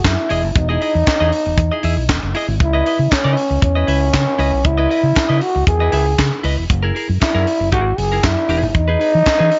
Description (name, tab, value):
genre	disco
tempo	117 BPM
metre	4/4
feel	straight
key	C# dorian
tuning	A4 = 440 Hz
part	growling trombone	melody	0.0-9.6 s	C#4 to G#4	-20 LUFS	equal	slapback echo
part	fingered electric bass	bass	0.0-9.5 s	E1 to E3	-20 LUFS	equal	none
part	tight funk drum kit	drums	0.0-9.6 s	handclaps, hi-hat, kick drum, snare drum	-22 LUFS	equal	gated reverb
part	clean electric guitar	accompaniment	0.2-9.6 s	D#4 to E5	-26 LUFS	equal	none
room	little or no reverb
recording	nothing above 7.6 kHz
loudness	-16 LUFS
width	mono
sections	0.0-9.6 A section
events	none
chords	0.3 Emaj7; 2.6 C#m9; 6.7 F#9; 8.5 Emaj7